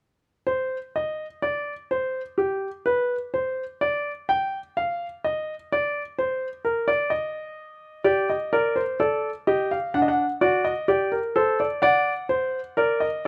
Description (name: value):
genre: classical, baroque-style 3-part fugue for grand piano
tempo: 63 BPM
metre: 4/4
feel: straight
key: unclear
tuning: A4 = 437 Hz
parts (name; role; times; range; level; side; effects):
- warm baby grand piano; solo; 0.5-13.3 s; D4 to G5; -24 LUFS; equal; none
room: light reverb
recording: none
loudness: -25 LUFS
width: mono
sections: 0.5-13.3 A section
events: none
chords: 0.5 N.C.; 8.1 Gm; 9.9 D; 11.8 D7